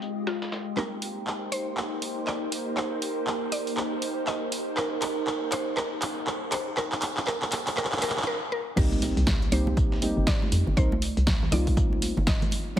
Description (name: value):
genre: deep house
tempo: 120 BPM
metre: 4/4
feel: swing 60% on 16ths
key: C minor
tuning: A4 = 441 Hz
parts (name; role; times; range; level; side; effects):
- soft string machine; sustained chords; 0.0-8.2 s; Ab3 to Eb5; -35 LUFS; left 1 dB; phaser, ensemble chorus, vintage 12-bit sampler grit, sidechain pumping
- deep mellow chord stab; stabs; 0.0-12.8 s; G3 to Bb4; -31 LUFS; equal; chorus, cassette tape, sidechain pumping, ping-pong delay
- dusty soul sampler-style drum kit; drums; 0.0-0.7, 8.8-12.8 s; hi-hat, snare drum, tambourine; -39 LUFS; left 1 dB; overdrive, sidechain pumping on perc, high-pass filter on perc, low-pass filter on perc, sidechain pumping on hats, high-pass filter on hats, low-pass filter on hats, high-pass filter on snare, low-pass filter on snare, high-pass filter on room, low-pass filter on room
- warbly tape-like pad; texture; 0.0-8.3 s; Ab3 to G5; -34 LUFS; right 2 dB; chorus, built-in reverb, sidechain pumping
- mallet-like synth pluck; melody; 0.3-12.8 s; F4 to Eb5; -34 LUFS; left 1 dB; chorus, dub echo
- punchy analog drum machine; drums; 0.8-12.6 s; crash cymbal, handclaps, hi-hat, snare drum; -30 LUFS; equal; none
- hollow knocking FM bass; bass; 8.8-12.8 s; G1 to F2; -27 LUFS; equal; sidechain pumping
- electronic kick drum; drums; 8.8-12.8 s; none; -25 LUFS; equal; none
- congas; percussion; 8.8-12.8 s; none; -34 LUFS; right 2 dB; sidechain pumping on perc
- impact; sound effects; 8.8-10.8 s; none; -35 LUFS; equal; none
room: light reverb, digital ambience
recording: heavily compressed radio sound, multiband compression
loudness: -24 LUFS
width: side -11 dB against mid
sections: 0.8-8.8 A section; 8.8-12.8 B section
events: build-up 0.8-8.8; drum fill 0.8-8.3; filter sweep on synth stab 0.8-8.8; break 8.3-8.8; drop 8.8-12.8; impact 8.8-10.8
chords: 0.0 Fm9; 0.8 Cm7; 8.5 N.C.; 8.8 Cm7